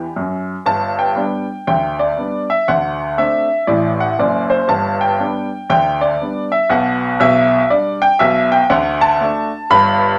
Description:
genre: jazz, stride piano.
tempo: 120 BPM.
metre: 4/4.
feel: swing 64% on 8ths.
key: G major.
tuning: A4 = 443 Hz.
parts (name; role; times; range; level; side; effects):
clear upright piano; solo; 0.0-10.2 s; F#1 to B5; -16 LUFS; equal; none.
room: wet small room reverb, RT60 0.5 s.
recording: none.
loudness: -16 LUFS.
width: mono.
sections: 0.7-10.2 A section.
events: upright piano fill 0.0-0.7.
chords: 0.0 G; 2.7 D7; 4.7 G; 6.7 G/B; 8.7 D.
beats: 0.16 | 0.67 1.17 1.67 2.17 | 2.68 3.18 3.68 4.18 | 4.68 5.19 5.69 6.19 | 6.69 7.19 7.70 8.20 | 8.70 9.20 9.71.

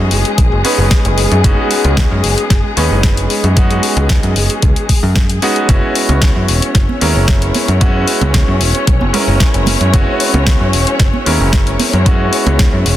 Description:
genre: nu-disco, nu disco.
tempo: 113 BPM.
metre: 4/4.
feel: straight.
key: F# mixolydian.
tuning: A4 = 440 Hz.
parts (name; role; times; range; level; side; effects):
bright concert grand piano; accompaniment; 0.0-13.0 s; G#3 to B4; -18 LUFS; right 2 dB; sidechain pumping, digital delay.
muted studio string section; sustained chords; 0.0-13.0 s; G#3 to C#5; -20 LUFS; left 3 dB; sidechain pumping.
picked electric bass; bass; 0.0-13.0 s; E1 to F#2; -14 LUFS; equal; none.
house drum kit; drums; 0.1-13.0 s; hi-hat, snare drum; -18 LUFS; left 3 dB; none.
electronic kick drum; drums; 0.4-12.7 s; none; -13 LUFS; equal; none.
congas; percussion; 6.1-12.6 s; none; -22 LUFS; right 4 dB; none.
room: small room ambience.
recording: dense, heavily limited modern master.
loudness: -10 LUFS.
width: side -13 dB against mid.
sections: 0.0-13.0 A section.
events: none.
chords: 0.0 B6/F#; 5.7 F#7sus4.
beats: 0.38 0.91 | 1.44 1.97 2.50 3.04 | 3.57 4.10 4.63 5.16 | 5.69 6.22 6.75 7.28 | 7.81 8.35 8.88 9.41 | 9.94 10.47 11.00 11.53 | 12.06 12.59.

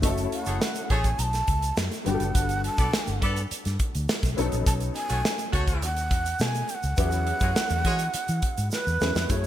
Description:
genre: polished 1980s jazz-funk pop.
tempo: 104 BPM.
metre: 4/4.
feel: straight.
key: unclear.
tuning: A4 = 440 Hz.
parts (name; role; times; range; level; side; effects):
breathy mellow shakuhachi; melody; 0.0-9.5 s; B4 to A#5; -30 LUFS; right 2 dB; none.
warm baby grand piano; accompaniment; 0.0-9.5 s; F#3 to A4; -32 LUFS; left 4 dB; ensemble chorus.
vintage muted fingered electric bass; bass; 0.0-9.5 s; F#1 to E3; -28 LUFS; equal; none.
modern studio drum kit; drums; 0.0-9.5 s; hi-hat, kick drum, snare drum; -27 LUFS; equal; gated reverb.
egg shaker; percussion; 0.0-9.5 s; none; -41 LUFS; right 5 dB; none.
mellow horn section; second line; 0.5-8.0 s; G#3 to D5; -34 LUFS; equal; none.
room: light reverb, small room ambience.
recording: bright 1980s-style digital production.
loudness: -23 LUFS.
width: side -12 dB against mid.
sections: 0.0-9.3 A section.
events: drum fill 8.7-9.3.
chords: 0.0 F#m9; 2.1 Gmaj9; 4.4 B9; 7.0 E69.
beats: | 0.04 0.61 1.19 1.77 | 2.35 2.93 3.51 4.09 | 4.67 5.24 5.82 6.40 | 6.98 7.56 8.14 8.72 | 9.30.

